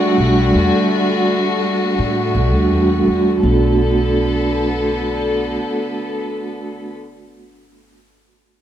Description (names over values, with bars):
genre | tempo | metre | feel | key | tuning
trip hop | 83 BPM | 4/4 | straight | B minor | A4 = 435 Hz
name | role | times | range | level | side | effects
vibraphone with soft mallets | accompaniment | 0.0-7.0 s | G3 to F#4 | -18 LUFS | right 2 dB | tremolo, low-pass filter, tape echo
rich chamber string section | sustained chords | 0.0-6.9 s | D3 to A4 | -20 LUFS | left 2 dB | none
flickering grainy texture | texture | 0.0-3.4 s | A3 to A4 | -28 LUFS | equal | none
upright bass | bass | 0.2-5.6 s | B1 to A2 | -19 LUFS | equal | none
room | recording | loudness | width
light reverb, small room ambience | rough home demo mix | -14 LUFS | side -10 dB against mid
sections
0.0-3.4 A section; 3.4-6.3 B section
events
filter sweep on upright bass 0.0-3.4; filter sweep on vibraphone 0.0-3.4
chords
0.0 Em11; 3.4 Bm7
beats
| 0.53 1.26 1.98 2.70 | 3.42 4.15 4.87 5.59